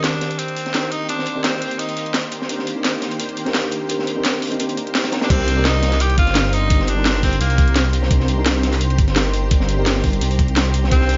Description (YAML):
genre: liquid drum and bass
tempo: 171 BPM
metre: 4/4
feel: swing 54% on 16ths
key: C minor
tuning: A4 = 440 Hz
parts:
  - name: raspy tenor saxophone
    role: melody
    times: 0.0-2.1, 5.2-7.9, 10.9-11.2 s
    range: Bb3 to G4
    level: -26 LUFS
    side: equal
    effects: tape echo
  - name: mellow FM electric piano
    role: accompaniment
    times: 0.0-11.2 s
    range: Eb3 to D5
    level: -28 LUFS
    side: equal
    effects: chorus, phaser, tape echo
  - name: shimmering ambient pad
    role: sustained chords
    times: 0.8-11.2 s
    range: Eb3 to C6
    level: -32 LUFS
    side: equal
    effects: chorus, built-in reverb
  - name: crunchy breakbeat drum kit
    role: drums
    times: 0.0-11.2 s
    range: hi-hat, snare drum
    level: -28 LUFS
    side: equal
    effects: high-pass filter on hats, high-pass filter on snare, high-pass filter on room
  - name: drum and bass drum kit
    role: drums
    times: 0.0-11.2 s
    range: crash cymbal, hi-hat, snare drum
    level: -26 LUFS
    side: equal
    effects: high-pass filter on hats, high-pass filter on snare, high-pass filter on cymbals, high-pass filter on room
  - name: dark detuned saw bass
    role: bass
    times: 5.3-11.2 s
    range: G1 to C2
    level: -21 LUFS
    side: equal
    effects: none
  - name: electronic kick drum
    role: drums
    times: 5.3-11.0 s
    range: none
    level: -18 LUFS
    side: equal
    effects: none
room: moderate recital hall reverb, RT60 1.2 s, small room ambience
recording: nothing above 7.5 kHz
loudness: -19 LUFS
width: mono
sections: 0.0-5.3 A section; 5.3-11.2 B section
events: build-up 0.0-5.3; drop 5.3-11.2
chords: 0.0 Cm7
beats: 0.04 0.39 0.74 | 1.09 1.44 1.79 2.15 | 2.50 2.85 3.20 3.55 | 3.90 4.25 4.60 4.95 | 5.30 5.65 6.00 6.36 | 6.71 7.06 7.41 7.76 | 8.11 8.46 8.81 9.16 | 9.51 9.86 10.21 10.57 | 10.92